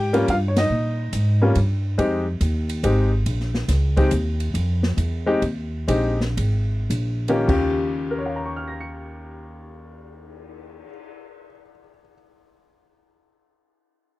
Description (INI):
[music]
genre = jazz piano trio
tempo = 98-141 BPM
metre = 3/4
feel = swing 66% on 8ths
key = Eb mixolydian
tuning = A4 = 440 Hz
[part]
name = bright upright piano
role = melody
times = 0.0-12.1 s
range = Eb2 to Db7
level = -22 LUFS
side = left 1 dB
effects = none
[part]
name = upright bass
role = bass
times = 0.0-10.8 s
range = Ab1 to Bb2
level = -22 LUFS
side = equal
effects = none
[part]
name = open jazz drum kit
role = drums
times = 0.1-11.0 s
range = crash cymbal, cymbal swell, hi-hat, kick drum, ride cymbal, snare drum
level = -29 LUFS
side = equal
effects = none
[sound]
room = little or no reverb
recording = dry, close 1970s-style studio recording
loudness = -19 LUFS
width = side -18 dB against mid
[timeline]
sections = 0.0-2.0 A section; 2.0-7.5 B section; 7.5-11.2 C section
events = band accent 0.5; slowing down 4.6-7.5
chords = 0.0 Eb; 2.0 Fm9; 3.3 Bbsus4; 4.6 F7(no3); 5.9 Bb7sus4; 7.5 Eb9